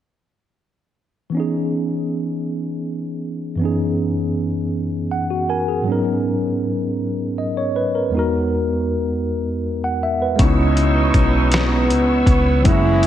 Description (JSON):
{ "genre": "slow six-eight R&B", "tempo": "53 BPM (dotted quarters)", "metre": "6/8", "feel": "straight", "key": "C# dorian", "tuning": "A4 = 442 Hz", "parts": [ { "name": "tine electric piano", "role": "accompaniment", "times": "1.3-13.1 s", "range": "E2 to G#5", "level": "-19 LUFS", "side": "equal", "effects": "medium stereo tremolo, slapback echo" }, { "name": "tonewheel organ", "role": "sustained chords", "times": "10.4-13.1 s", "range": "G#4 to E6", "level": "-25 LUFS", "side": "equal", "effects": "overdrive, chorus vibrato, slow rotary speaker" }, { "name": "clear horn section", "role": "stabs", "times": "10.4-13.1 s", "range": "B2 to G#4", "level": "-25 LUFS", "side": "left 1 dB", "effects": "none" }, { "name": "vintage muted fingered electric bass", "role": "bass", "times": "10.4-13.1 s", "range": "F#1 to C#2", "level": "-18 LUFS", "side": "equal", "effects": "none" }, { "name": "dusty soul sampler-style drum kit", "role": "drums", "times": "10.4-13.1 s", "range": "hi-hat, kick drum, snare drum", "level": "-18 LUFS", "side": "equal", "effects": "none" }, { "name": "mellow French horn", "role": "melody", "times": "11.5-13.1 s", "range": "B3 to E4", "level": "-18 LUFS", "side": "right 1 dB", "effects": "none" } ], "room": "moderate concert hall reverb, RT60 2.4 s", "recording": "big arena sound", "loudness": "-17 LUFS", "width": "side -11 dB against mid", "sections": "1.3-10.4 A section; 10.4-13.1 B section", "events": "tine electric piano fill 4.7-5.9", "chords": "1.3 C#m9; 3.6 F#13sus4; 5.9 G#m11; 8.1 Emaj9#11; 10.4 C#m9", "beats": "| 1.33 2.46 | 3.60 4.73 | 5.86 6.99 | 8.12 9.26 | 10.39 11.52 | 12.65" }